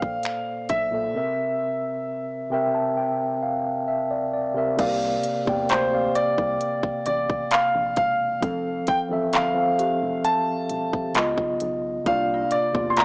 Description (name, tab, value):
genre	contemporary R&B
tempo	66 BPM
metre	4/4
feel	straight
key	unclear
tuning	A4 = 440 Hz
part	clear concert grand piano	melody	0.0-13.0 s	C5 to C6	-24 LUFS	equal	cassette tape
part	mellow tine electric piano	accompaniment	0.0-13.0 s	Bb2 to A5	-24 LUFS	equal	medium stereo tremolo, cassette tape
part	rubbery square bass	bass	0.0-13.0 s	E1 to E2	-36 LUFS	equal	none
part	trap drum kit	drums	0.0-13.0 s	crash cymbal, finger snaps, handclaps, hi-hat, kick drum	-25 LUFS	equal	cassette tape
part	synth chime	texture	4.8-13.0 s	D4 to Bb4	-37 LUFS	equal	ensemble chorus, cassette tape, analog delay
room	moderate spring reverb, RT60 2.0 s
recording	home recording on cassette, small speaker sound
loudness	-21 LUFS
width	side -34 dB against mid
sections	0.0-4.8 A section; 4.8-13.0 B section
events	tine electric piano fill 2.1-4.8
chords	0.0 Bbmaj7; 1.2 C7; 4.8 C9sus4; 8.4 Fmaj7; 11.2 Db9; 12.1 C9sus4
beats	0.24 | 1.15 2.06 2.97 3.88 | 4.79 5.70 6.61 7.52 | 8.43 9.33 10.24 11.15 | 12.06 12.97